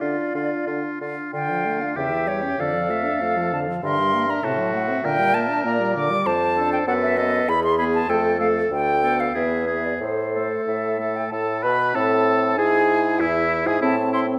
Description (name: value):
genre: quick classical-period movement for wind quintet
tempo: 97 BPM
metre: 2/4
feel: rubato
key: D minor, A minor from 6.3 s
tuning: A4 = 440 Hz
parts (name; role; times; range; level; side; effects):
- bright concert flute; melody; 0.0-14.2 s; C5 to D6; -27 LUFS; equal; none
- clear oboe; second line; 0.0-14.3 s; E4 to B4; -29 LUFS; equal; none
- mellow clarinet; accompaniment; 0.0-14.3 s; C4 to G5; -29 LUFS; equal; none
- warm French horn; accompaniment; 0.0-14.4 s; C3 to F4; -30 LUFS; equal; none
- warm bassoon; bass; 0.0-14.4 s; D2 to D3; -28 LUFS; equal; none
room: wet recital hall reverb, RT60 1.5 s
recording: none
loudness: -22 LUFS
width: mono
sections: 0.0-1.3 A section; 1.3-11.3 A section; 11.3-14.4 B section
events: none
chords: 0.0 Dm; 2.0 C#dim/E; 2.6 Dm/F; 3.8 Gm; 4.4 F#dim/A; 5.0 Gm/Bb; 6.3 Dm/F; 6.9 B7/F#; 7.5 E; 8.1 F; 8.7 Dmadd11; 9.4 E; 10.0 Am; 12.6 E/G#; 13.8 Am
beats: | 0.01 0.68 | 1.34 1.97 | 2.59 3.21 | 3.83 4.44 | 5.05 5.65 | 6.27 6.88 | 7.49 8.09 | 8.72 9.36 | 10.01 10.67 | 11.32 11.95 | 12.58 13.20 | 13.81